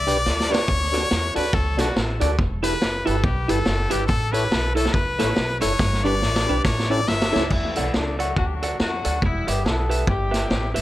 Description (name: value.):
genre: ska.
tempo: 141 BPM.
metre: 4/4.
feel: swing 59% on 8ths.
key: D major.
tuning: A4 = 438 Hz.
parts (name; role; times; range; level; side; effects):
brilliant trumpet; melody; 0.0-7.5 s; F#4 to E5; -25 LUFS; left 2 dB; analog delay.
upright bass; bass; 0.0-10.8 s; E1 to E2; -26 LUFS; equal; none.
clean electric guitar; accompaniment; 0.1-10.8 s; D4 to F#5; -28 LUFS; right 4 dB; none.
mellow tonewheel organ; stabs; 0.1-7.4 s; C#4 to C#5; -28 LUFS; left 2 dB; chorus vibrato, slow rotary speaker, analog delay.
vintage drum kit; drums; 0.1-10.8 s; crash cymbal, hi-hat, kick drum, snare drum; -24 LUFS; equal; analog delay.
warm horn section; melody; 7.5-10.8 s; D3 to A4; -27 LUFS; left 2 dB; none.
room: moderate club reverb, RT60 0.5 s.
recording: none.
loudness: -19 LUFS.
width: side -15 dB against mid.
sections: 0.0-7.5 A section; 7.5-10.8 B section.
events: trumpet solo 0.0-7.5; drum fill 0.3-0.7, 5.8-7.5.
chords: 0.0 G; 0.7 D; 2.4 Em; 4.1 A; 5.8 G; 6.7 A; 7.5 D; 9.2 Em.